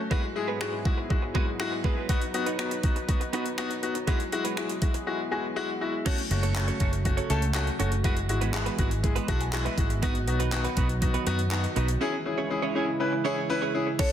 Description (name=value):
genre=dance-pop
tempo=121 BPM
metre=4/4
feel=straight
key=F# dorian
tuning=A4 = 441 Hz
part: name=chorused pulse-width pad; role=sustained chords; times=0.0-14.1 s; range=G#2 to B4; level=-35 LUFS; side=right 2 dB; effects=sidechain pumping
part: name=direct-recorded clean electric guitar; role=riff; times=0.0-14.1 s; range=G#3 to C#5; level=-34 LUFS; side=right 8 dB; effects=lush chorus
part: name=bright concert grand piano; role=accompaniment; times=0.1-14.1 s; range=G#3 to A5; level=-30 LUFS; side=left 4 dB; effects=sidechain pumping
part: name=pop drum kit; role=drums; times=0.1-14.1 s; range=crash cymbal, finger snaps, handclaps, hi-hat, kick drum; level=-28 LUFS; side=equal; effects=overdrive
part: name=vintage muted fingered electric bass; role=bass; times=6.3-12.0 s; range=F#1 to F#2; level=-28 LUFS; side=equal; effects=sidechain pumping
part: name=marimba with medium mallets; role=melody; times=14.0-14.1 s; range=C#5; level=-28 LUFS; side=left 3 dB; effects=none
room=light reverb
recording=dense, heavily limited modern master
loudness=-25 LUFS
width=side -10 dB against mid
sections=0.0-6.1 A section; 6.1-14.0 B section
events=break 5.1-6.1; grand piano fill 5.1-6.1, 9.0-10.0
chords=0.1 Eadd9/G#; 2.1 B; 4.1 Eadd9; 6.1 F#m; 8.0 Eadd9; 10.0 B; 12.0 C#m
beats=| 0.11 0.60 1.10 1.60 | 2.09 2.59 3.08 3.58 | 4.08 4.57 5.07 5.56 | 6.06 6.55 7.05 7.55 | 8.04 8.54 9.04 9.53 | 10.03 10.52 11.02 11.51 | 12.01 12.51 13.00 13.50 | 13.99